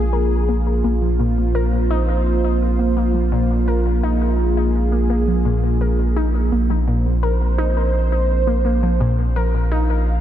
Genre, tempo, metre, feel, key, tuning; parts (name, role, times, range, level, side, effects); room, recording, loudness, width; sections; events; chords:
drum and bass; 169 BPM; 4/4; swing 59% on 16ths, half-time; A4 = 440 Hz
dark analog pad; sustained chords; 0.0-10.2 s; Bb3 to F5; -22 LUFS; right 2 dB; chorus
warbly dusty pluck; arpeggios; 0.0-9.8 s; Bb2 to Bb4; -23 LUFS; left 2 dB; chorus, phaser, ping-pong delay
saturated sub bass; bass; 0.0-10.2 s; Bb1; -18 LUFS; equal
light reverb; -16 LUFS; side -11 dB against mid
0.0-10.2 A section
0.0 Bb5